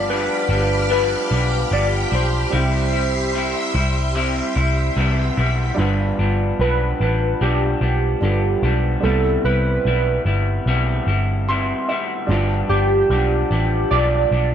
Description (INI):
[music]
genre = indie pop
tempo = 74 BPM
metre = 4/4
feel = swing 55% on 16ths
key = unclear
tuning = A4 = 440 Hz
[part]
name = warbly lo-fi synth keys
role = melody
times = 0.0-14.5 s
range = G4 to D5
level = -22 LUFS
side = right 1 dB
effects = analog chorus, tape echo
[part]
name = dark upright piano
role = accompaniment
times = 0.0-14.5 s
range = G3 to C6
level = -28 LUFS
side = right 4 dB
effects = cassette tape
[part]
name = electric guitar through a small old amp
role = accompaniment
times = 0.0-14.5 s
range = G2 to E4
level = -24 LUFS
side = left 2 dB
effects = wide subtle chorus, warbly pitch drift
[part]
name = string machine, violins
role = sustained chords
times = 0.0-5.7 s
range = G4 to D6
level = -25 LUFS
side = equal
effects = ensemble chorus
[part]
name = vintage muted picked electric bass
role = bass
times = 0.0-14.5 s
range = G1 to C2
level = -20 LUFS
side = equal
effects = none
[sound]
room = light reverb, digital ambience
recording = nothing above 10.9 kHz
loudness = -17 LUFS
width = side -9 dB against mid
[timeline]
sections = 0.0-5.8 A section; 5.8-14.5 B section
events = upright piano fill 11.1-12.3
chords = 0.0 G7; 2.5 Cmaj7; 5.8 G7; 9.0 Cmaj7; 12.3 G7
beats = 0.09 0.90 1.72 | 2.53 3.34 4.16 4.97 | 5.78 6.60 7.41 8.22 | 9.04 9.85 10.66 11.48 | 12.29 13.11 13.92